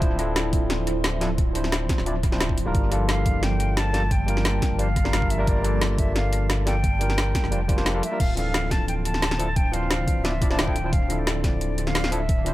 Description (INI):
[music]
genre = liquid drum and bass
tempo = 176 BPM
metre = 4/4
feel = straight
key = unclear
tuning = A4 = 440 Hz
[part]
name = barky tine electric piano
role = accompaniment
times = 0.0-12.5 s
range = E3 to D5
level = -29 LUFS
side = left 1 dB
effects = overdrive, analog delay
[part]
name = shimmering ambient pad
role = sustained chords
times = 0.0-12.5 s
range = D3 to A5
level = -33 LUFS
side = right 1 dB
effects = chorus, built-in reverb, phaser, sidechain pumping
[part]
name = warm sub bass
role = bass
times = 0.0-12.5 s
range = D1 to G1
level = -26 LUFS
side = equal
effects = tube saturation
[part]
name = drum and bass drum kit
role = drums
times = 0.0-12.5 s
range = crash cymbal, hi-hat, snare drum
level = -28 LUFS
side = equal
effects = overdrive, small room ambience, analog delay
[part]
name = electronic kick drum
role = drums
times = 0.0-12.4 s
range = none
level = -23 LUFS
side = equal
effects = overdrive, small room ambience
[part]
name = silver concert flute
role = melody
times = 3.1-12.5 s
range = D5 to A5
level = -30 LUFS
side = equal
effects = analog delay
[sound]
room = light reverb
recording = echo-heavy mix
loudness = -21 LUFS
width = side -16 dB against mid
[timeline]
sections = 0.0-8.2 A section; 8.2-12.5 A section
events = drop 0.0-8.2, 8.2-12.5; kick drops out 7.9-8.2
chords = 0.0 Dm9; 2.6 Gm9; 8.2 Dm9